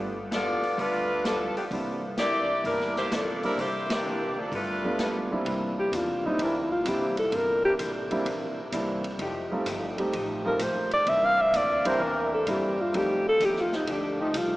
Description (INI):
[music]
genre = jazz, big band swing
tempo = 128 BPM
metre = 4/4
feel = swing 68% on 8ths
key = C mixolydian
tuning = A4 = 439 Hz
[part]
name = vintage hollow-body jazz guitar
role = accompaniment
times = 0.0-14.6 s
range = C3 to A4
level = -36 LUFS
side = left 1 dB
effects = none
[part]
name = warm grand piano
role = accompaniment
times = 0.0-13.2 s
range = G3 to G4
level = -33 LUFS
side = right 1 dB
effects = none
[part]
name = upright bass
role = bass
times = 0.0-14.6 s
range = F1 to G2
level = -41 LUFS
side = equal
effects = none
[part]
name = clear saxophone section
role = melody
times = 0.3-5.3 s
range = E3 to D5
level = -28 LUFS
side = equal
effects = none
[part]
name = swinging big-band drum kit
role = drums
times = 0.3-14.5 s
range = hi-hat, kick drum, ride cymbal, snare drum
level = -37 LUFS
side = equal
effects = none
[part]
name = dark alto saxophone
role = melody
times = 5.8-14.6 s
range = D4 to F5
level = -25 LUFS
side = equal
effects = none
[part]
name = warm trombone section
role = sustained chords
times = 6.4-14.3 s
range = E3 to Bb4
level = -37 LUFS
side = equal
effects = none
[sound]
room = wet cathedral reverb, RT60 6.2 s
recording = recorded in a church or concert hall, small speaker sound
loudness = -24 LUFS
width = side -18 dB against mid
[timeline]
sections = 0.0-5.5 A section; 5.5-14.6 B section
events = band accent 3.8; alto saxophone solo 5.5-14.6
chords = 0.0 G9; 1.7 C9; 4.5 G9; 5.5 C9; 9.2 F9; 11.1 C9; 12.9 F9